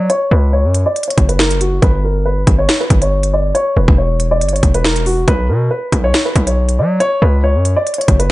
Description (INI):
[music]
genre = hip hop, drill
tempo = 139 BPM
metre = 4/4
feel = half-time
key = unclear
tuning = A4 = 440 Hz
[part]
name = dark concert grand piano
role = melody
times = 0.0-8.3 s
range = F#4 to D5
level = -17 LUFS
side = equal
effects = low-pass filter, tape echo
[part]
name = distorted 808-style bass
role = bass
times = 0.0-8.3 s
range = E1 to F#3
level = -14 LUFS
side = equal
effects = distortion
[part]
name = drill drum kit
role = drums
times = 0.1-8.3 s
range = hi-hat, kick drum, snare drum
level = -14 LUFS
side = equal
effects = none
[sound]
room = digital ambience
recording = nothing above 10.3 kHz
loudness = -11 LUFS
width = side -17 dB against mid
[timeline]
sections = 0.0-8.3 A section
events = none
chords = 0.1 F#5; 1.8 G; 3.6 N.C.; 5.3 B5; 7.0 F#5